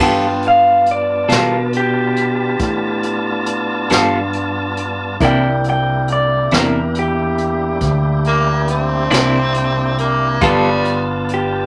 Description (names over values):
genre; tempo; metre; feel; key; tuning
slow blues; 46 BPM (dotted quarters); 12/8; straight; G mixolydian; A4 = 439 Hz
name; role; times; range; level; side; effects
electric guitar through a small old amp; melody; 0.0-11.7 s; G4 to G5; -20 LUFS; equal; none
bright grand piano; accompaniment; 0.0-11.7 s; B3 to A5; -26 LUFS; equal; none
electric guitar at the edge of break-up; accompaniment; 0.0-10.7 s; C3 to A4; -18 LUFS; equal; tremolo
tonewheel organ; sustained chords; 0.0-11.7 s; Bb3 to A5; -25 LUFS; equal; overdrive, fast rotary speaker
fretless electric bass; bass; 0.0-11.7 s; G1 to B2; -22 LUFS; equal; none
jazz brush drum kit; drums; 0.4-11.5 s; hi-hat, kick drum, snare drum; -23 LUFS; equal; none
growling tenor saxophone; second line; 8.3-11.1 s; G3 to C4; -20 LUFS; equal; none
room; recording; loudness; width
moderate studio ambience, RT60 0.4 s; none; -16 LUFS; mono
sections
0.0-11.7 A section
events
none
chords
0.0 G9; 5.2 C9; 10.4 G9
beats
1.30 2.60 3.91 | 5.21 6.51 7.82 9.12 | 10.42